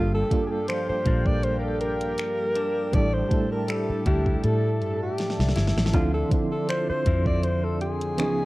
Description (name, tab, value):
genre	contemporary R&B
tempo	80 BPM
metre	4/4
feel	swing 54% on 16ths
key	D minor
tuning	A4 = 440 Hz
part	mellow alto saxophone	melody	0.0-8.5 s	F4 to D5	-28 LUFS	equal	none
part	FM electric piano with tremolo	accompaniment	0.0-8.5 s	E3 to A4	-30 LUFS	right 3 dB	none
part	chorused pulse-width pad	sustained chords	0.0-8.5 s	F3 to C6	-36 LUFS	equal	sidechain pumping
part	direct-recorded clean electric guitar	arpeggios	0.0-8.5 s	G2 to E4	-33 LUFS	left 3 dB	spring reverb
part	vintage muted fingered electric bass	bass	0.0-8.5 s	G1 to A2	-26 LUFS	equal	none
part	smooth R&B drum kit	drums	0.3-8.4 s	finger snaps, hi-hat, kick drum, snare drum	-26 LUFS	equal	none
room	light reverb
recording	worn, warbling old tape, cassette tape, warbly pitch drift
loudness	-22 LUFS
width	side -19 dB against mid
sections	0.0-8.5 A section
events	drum fill 5.2-5.9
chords	0.0 Gm7; 2.9 A7sus4; 5.9 Dm9